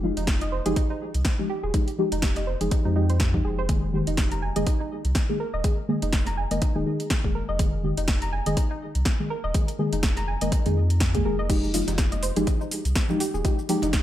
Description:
deep house; 123 BPM; 4/4; swing 56% on 16ths; A4 = 437 Hz
deep mellow chord stab; stabs; 0.0-13.9 s; Eb3 to Bb4; -28 LUFS; left 1 dB; chorus, phaser, sidechain pumping, diffuse ambient delay
warm sub bass; bass; 0.0-14.0 s; Eb1 to F2; -27 LUFS; equal; sidechain pumping
soft round pluck; arpeggios; 0.2-13.9 s; Eb4 to Bb5; -32 LUFS; right 1 dB; chorus, sidechain pumping, diffuse ambient delay
deep house drum kit; drums; 0.2-14.0 s; crash cymbal, hi-hat, shaker, snare drum; -31 LUFS; equal; overdrive, studio reverb
electronic kick drum; drums; 0.3-14.0 s; -25 LUFS; equal; overdrive, studio reverb
congas; percussion; 11.7-13.9 s; -37 LUFS; right 2 dB
light reverb, digital ambience; -22 LUFS; side -12 dB against mid
0.0-14.0 A section
filter sweep on synth stab 0.0-14.0
0.0 Fm9; 3.7 Ebsus4; 11.5 Fm9

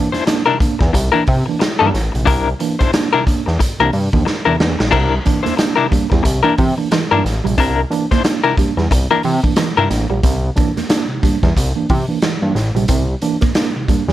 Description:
funk; 90 BPM; 4/4; swing 60% on 16ths; C mixolydian; A4 = 440 Hz
mellow tine electric piano; stabs; 0.0-14.0 s; C3 to D4; -21 LUFS; right 4 dB; fast stereo tremolo
electric guitar at the edge of break-up; accompaniment; 0.1-10.1 s; D4 to C5; -16 LUFS; left 6 dB; tremolo
fat analog bass; bass; 0.1-14.1 s; A1 to C3; -18 LUFS; equal
raw garage drum kit; drums; 0.1-14.1 s; crash cymbal, hi-hat, kick drum, snare drum; -18 LUFS; equal
mellow electric guitar; riff; 4.9-14.1 s; E3 to C4; -22 LUFS; right 8 dB; ensemble chorus
light reverb; -13 LUFS; side -13 dB against mid
0.0-14.1 A section
break 0.0-4.9; drum fill 4.3-4.9
0.0 C9

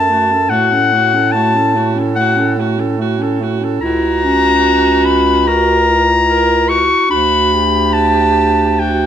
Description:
classical, lyrical piece for single-reed quartet; 72 BPM; 4/4; rubato; F# minor; A4 = 445 Hz
warm clarinet; melody; 0.0-9.1 s; F#5 to C#6; -13 LUFS; left 3 dB
bright alto saxophone; second line; 0.0-9.1 s; F#4 to A#4; -19 LUFS; right 9 dB
mellow clarinet; accompaniment; 0.0-9.1 s; A3 to F#4; -19 LUFS; equal
warm bass clarinet; bass; 0.0-9.1 s; C#2 to A2; -18 LUFS; right 2 dB
wet recital hall reverb, RT60 1.4 s; minimal, uncompressed stereo recording; -11 LUFS; side -9 dB against mid
0.0-9.1 A section
0.0 F#m; 0.5 F#m/A; 3.8 F#7/C#; 7.1 Bm/D

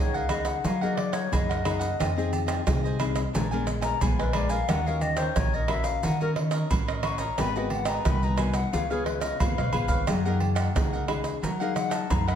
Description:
samba and choro; 89 BPM; 4/4; straight; F# major; A4 = 440 Hz
bright baroque flute; second line; 0.0-12.4 s; G#4 to C#6; -31 LUFS; left 6 dB
cavaquinho; accompaniment; 0.0-12.4 s; D4 to G#5; -35 LUFS; right 4 dB
nylon-string guitar; accompaniment; 0.0-12.4 s; G#2 to A#4; -32 LUFS; left 6 dB
upright bass; bass; 0.0-12.4 s; G#1 to F#3; -29 LUFS; equal
maracas, pandeiro, agogo bells, tamborim and surdo; percussion; 0.1-12.4 s; -28 LUFS; right 3 dB
moderate large studio reverb, RT60 1.2 s; -24 LUFS; side -9 dB against mid
0.0-12.4 A section
flute solo 0.0-12.4; drum fill 9.6-10.1
0.0 F#69; 2.0 Fm7; 3.3 A#7b9; 4.7 D#m7; 7.4 G#m9; 8.7 C#7; 10.1 F#69

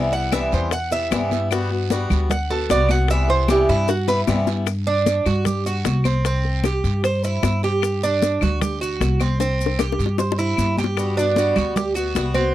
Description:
latin, Cuban son and guajira; 152 BPM; 4/4; straight; G major; A4 = 442 Hz
picked swing-style acoustic guitar; accompaniment; 0.0-4.7, 11.0-12.5 s; C3 to F#4; -24 LUFS; left 3 dB
upright bass; bass; 0.0-12.5 s; C2 to G2; -22 LUFS; equal
Cuban tres; arpeggios; 0.1-12.5 s; C4 to F#5; -22 LUFS; right 3 dB
bongos; percussion; 0.1-12.4 s; -26 LUFS; left 11 dB
congas; percussion; 0.1-12.5 s; -26 LUFS; left 1 dB
claves; percussion; 0.3-12.5 s; -31 LUFS; left 24 dB
guiro; percussion; 0.3-12.5 s; -37 LUFS; right 22 dB
maracas; percussion; 0.3-12.5 s; -38 LUFS; left 17 dB
little or no reverb; dry, close 1970s-style studio recording; -18 LUFS; side -14 dB against mid
0.0-4.7 A section; 4.7-12.5 B section
Cuban tres solo 0.0-4.7; drum fill 3.9-4.7, 9.4-11.0
0.0 Cmaj7; 1.5 Gmaj7; 3.1 Cmaj7; 4.7 G5; 6.2 C; 7.8 G5; 9.4 C; 11.0 Gmaj7

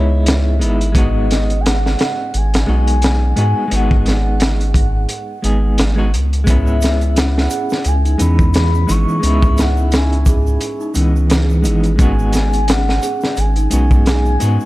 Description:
trip hop; 87 BPM; 4/4; swing 57% on 16ths; C# minor; A4 = 440 Hz
pure breathy sine lead; melody; 0.0-14.7 s; C#5 to C#6; -24 LUFS; left 2 dB; phaser, wide subtle chorus, tape echo
semi-hollow electric guitar; accompaniment; 0.0-14.7 s; E3 to G#4; -21 LUFS; equal; tremolo, vintage 12-bit sampler grit, tape echo
soft dub sub bass; bass; 0.0-14.6 s; G#1 to G#2; -15 LUFS; equal
crunchy breakbeat drum kit; drums; 0.3-14.6 s; hi-hat, kick drum, snare drum; -17 LUFS; equal
large celesta; arpeggios; 6.5-14.7 s; C#4 to G#4; -24 LUFS; equal; vintage 12-bit sampler grit, tape echo
tube shaker; percussion; 6.5-14.7 s; -36 LUFS; right 8 dB
little or no reverb; dark, warm production; -12 LUFS; side -17 dB against mid
0.0-14.7 A section
0.0 C#m7; 1.0 G#m7; 6.5 C#m7; 12.0 G#m7

